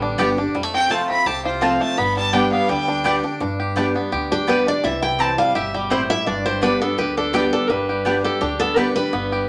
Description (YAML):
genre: bluegrass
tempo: 168 BPM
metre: 4/4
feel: straight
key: G mixolydian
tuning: A4 = 440 Hz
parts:
  - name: bluegrass banjo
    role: melody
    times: 0.0-9.5 s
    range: E3 to G4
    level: -27 LUFS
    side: equal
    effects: none
  - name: picked steel-string acoustic guitar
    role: accompaniment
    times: 0.0-9.5 s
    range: F2 to G4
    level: -26 LUFS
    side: equal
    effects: none
  - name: upright bass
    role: bass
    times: 0.0-9.5 s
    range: F1 to D2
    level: -35 LUFS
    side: equal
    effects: none
  - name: mandolin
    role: stabs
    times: 0.2-8.9 s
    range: B3 to A5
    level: -25 LUFS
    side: equal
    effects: none
  - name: clear fiddle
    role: second line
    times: 0.7-3.3 s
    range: C5 to B5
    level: -23 LUFS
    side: equal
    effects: none
  - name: picked steel-string acoustic guitar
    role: melody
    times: 4.3-9.5 s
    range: G4 to A5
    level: -23 LUFS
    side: equal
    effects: none
room: wet studio reverb, RT60 0.5 s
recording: none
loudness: -20 LUFS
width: mono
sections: 0.0-3.4 A section; 3.4-9.5 B section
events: fiddle solo 0.0-3.4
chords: 0.0 G; 0.5 F; 2.0 G; 4.8 C; 6.3 G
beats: 0.19 | 0.55 0.91 1.26 1.62 | 1.98 2.33 2.69 3.05 | 3.41 3.76 4.12 4.48 | 4.84 5.20 5.55 5.91 | 6.27 6.62 6.98 7.34 | 7.70 8.05 8.41 8.77 | 9.13 9.48